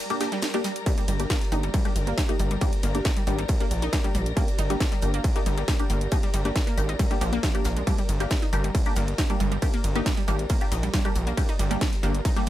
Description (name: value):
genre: driving peak-time techno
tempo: 137 BPM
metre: 4/4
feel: straight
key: G minor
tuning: A4 = 437 Hz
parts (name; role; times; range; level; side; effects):
- dark studio string section; texture; 0.0-12.5 s; G4 to Bb5; -35 LUFS; left 1 dB; sidechain pumping
- analog pluck; riff; 0.1-12.5 s; F3 to G4; -32 LUFS; right 1 dB; chorus, sidechain pumping, dub echo
- filtered dub chord stab; stabs; 0.1-12.5 s; Bb3 to G4; -31 LUFS; left 2 dB; phaser, analog chorus, cassette tape, sidechain pumping, tape echo
- techno drum kit; drums; 0.1-12.5 s; hi-hat, ride cymbal, snare drum; -34 LUFS; right 1 dB; overdrive, small room ambience
- soft brush drum kit; drums; 0.2-12.5 s; hi-hat, snare drum; -40 LUFS; left 2 dB; none
- electronic kick drum; drums; 0.9-12.3 s; none; -25 LUFS; equal; distortion, overdrive, small room ambience
- gritty driven synth bass; bass; 1.1-12.5 s; G1 to Bb1; -26 LUFS; equal; sidechain pumping
room: small room ambience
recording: none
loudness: -22 LUFS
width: side -14 dB against mid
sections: 0.0-12.5 A section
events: break 0.0-0.9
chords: 0.0 Gm